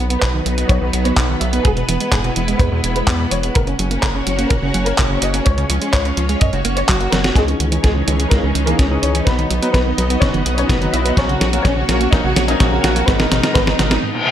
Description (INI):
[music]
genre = italo disco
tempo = 126 BPM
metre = 4/4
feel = straight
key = B major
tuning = A4 = 442 Hz
[part]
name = dark studio violin section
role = melody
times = 0.0-14.0 s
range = G#3 to F#5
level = -21 LUFS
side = equal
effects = tape echo
[part]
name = string machine, full ensemble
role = sustained chords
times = 0.0-14.0 s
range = E3 to D#5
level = -24 LUFS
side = equal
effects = ensemble chorus
[part]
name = wide unison pluck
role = arpeggios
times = 0.0-14.3 s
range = G#2 to F#4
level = -25 LUFS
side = right 3 dB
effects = tape echo
[part]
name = round analog bass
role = bass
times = 0.0-14.0 s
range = E1 to F#2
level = -20 LUFS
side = equal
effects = tube saturation
[part]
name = clean 12-bit digital drum machine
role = drums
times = 0.1-14.0 s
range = handclaps, hi-hat, snare drum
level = -21 LUFS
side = right 1 dB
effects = none
[part]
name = kick drum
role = drums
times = 0.2-13.7 s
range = none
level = -16 LUFS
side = equal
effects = none
[part]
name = overdriven tine electric piano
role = stabs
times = 7.4-13.9 s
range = E3 to B4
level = -24 LUFS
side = left 2 dB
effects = fast tremolo, low-pass filter
[part]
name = reverse cymbal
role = sound effects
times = 14.1-14.3 s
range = none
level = -16 LUFS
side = left 4 dB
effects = none
[sound]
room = moderate digital room reverb, RT60 1.1 s, small room ambience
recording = none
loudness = -14 LUFS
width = side -10 dB against mid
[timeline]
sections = 0.0-7.4 A section; 7.4-14.3 B section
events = drum fill 7.1, 7.4-14.0; filter sweep on synth arpeggio sound 7.4-14.3; filter sweep on tine electric piano 7.4-14.3; break 14.0; reverse cymbal 14.1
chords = 0.0 B; 1.6 E; 3.6 F#; 5.5 C#; 6.4 F#; 7.4 C#madd9; 9.3 B; 11.2 F#/A#; 13.1 G#madd9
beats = 0.22 0.70 1.17 | 1.65 2.12 2.60 3.08 | 3.55 4.03 4.51 4.98 | 5.46 5.93 6.41 6.89 | 7.36 7.84 8.32 8.79 | 9.27 9.74 10.22 10.70 | 11.17 11.65 12.12 12.60 | 13.08 13.55 14.03